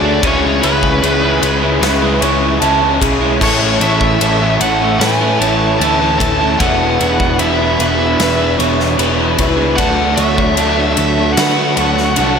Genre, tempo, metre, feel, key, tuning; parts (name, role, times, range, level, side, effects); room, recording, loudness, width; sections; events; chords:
rock, shoegaze and dream pop; 75 BPM; 4/4; straight; A major; A4 = 439 Hz
nasal lead guitar with a parked wah; melody; 0.0-12.4 s; B4 to A5; -18 LUFS; equal; overdrive, diffuse ambient delay
electric guitar through a small old amp; arpeggios; 0.0-12.4 s; G#4 to A5; -19 LUFS; right 1 dB; wide subtle chorus, diffuse ambient delay
crunchy overdriven guitar; riff; 0.0-12.4 s; A2 to G#4; -19 LUFS; right 7 dB; reverse reverb
overdriven semi-hollow guitar; riff; 0.0-12.4 s; E2 to F#4; -20 LUFS; left 7 dB; lush chorus
overdriven semi-hollow guitar; riff; 0.0-12.4 s; E2 to D4; -20 LUFS; equal
picked electric bass; bass; 0.0-12.4 s; E1 to D3; -20 LUFS; equal
big rock drum kit; drums; 0.2-12.3 s; crash cymbal, kick drum, ride cymbal, snare drum; -20 LUFS; left 2 dB
wet huge ambient reverb, RT60 8.2 s; dreamy mix soaked in reverb; -11 LUFS; side -6 dB against mid
0.0-12.4 A section
0.2 C#m7; 3.4 A; 6.6 E5; 9.8 Dmaj7